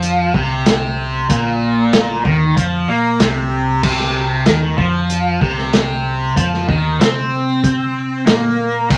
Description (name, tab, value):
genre	psychedelic rock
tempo	95 BPM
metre	4/4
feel	straight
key	C minor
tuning	A4 = 440 Hz
part	fuzz guitar	riff	0.0-9.0 s	Bb2 to C4	-19 LUFS	equal	distortion, phaser
part	picked electric bass	bass	0.0-9.0 s	Bb1 to C3	-26 LUFS	equal	none
part	vintage drum kit	drums	0.0-9.0 s	crash cymbal, hi-hat, kick drum, snare drum	-19 LUFS	equal	none
room	moderate studio reverb, RT60 0.8 s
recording	none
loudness	-16 LUFS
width	mono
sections	0.0-9.0 A section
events	none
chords	0.0 Cm